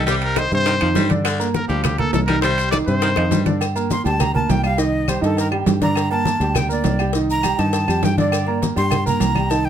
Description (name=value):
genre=latin, salsa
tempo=204 BPM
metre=4/4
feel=straight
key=G minor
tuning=A4 = 440 Hz
part: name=bright trumpet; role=melody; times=0.0-3.4 s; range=G4 to D5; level=-22 LUFS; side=left 2 dB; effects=plate reverb
part: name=warm baby grand piano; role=accompaniment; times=0.0-9.7 s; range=C3 to Bb5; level=-23 LUFS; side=right 3 dB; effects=none
part: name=fingered electric bass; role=bass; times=0.0-9.7 s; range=C2 to G2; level=-21 LUFS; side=left 1 dB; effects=none
part: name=raspy baritone saxophone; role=second line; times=0.1-3.5 s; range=D3 to G3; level=-24 LUFS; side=left 2 dB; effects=none
part: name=bongos and cowbell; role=percussion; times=0.1-9.7 s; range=none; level=-29 LUFS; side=left 9 dB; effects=none
part: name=congas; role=percussion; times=0.1-9.7 s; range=none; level=-25 LUFS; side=left 2 dB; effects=none
part: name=maracas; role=percussion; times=0.1-9.7 s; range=none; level=-34 LUFS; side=left 7 dB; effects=none
part: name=timbales and agogo bells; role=percussion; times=0.1-9.5 s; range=none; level=-27 LUFS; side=right 9 dB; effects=none
part: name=claves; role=percussion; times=0.4-9.5 s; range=none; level=-30 LUFS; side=left 12 dB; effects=none
part: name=breathy bright jazz flute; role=melody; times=3.9-9.7 s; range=A4 to C6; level=-23 LUFS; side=right 1 dB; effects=plate reverb
room=light reverb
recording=close, detailed microphones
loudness=-16 LUFS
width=side -9 dB against mid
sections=0.0-3.6 A section; 3.6-9.7 B section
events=drum fill 3.2-3.6; flute solo 3.6-9.7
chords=0.1 Cm; 1.3 Gm; 2.4 Cm; 3.6 Gm; 4.8 Cm; 6.0 Gm; 7.1 Cm; 8.3 Gm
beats=| 0.07 0.37 0.66 0.96 | 1.25 1.55 1.84 2.14 | 2.43 2.73 3.02 3.31 | 3.61 3.90 4.20 4.49 | 4.79 5.08 5.38 5.67 | 5.96 6.26 6.55 6.85 | 7.14 7.44 7.73 8.03 | 8.32 8.62 8.91 9.21 | 9.50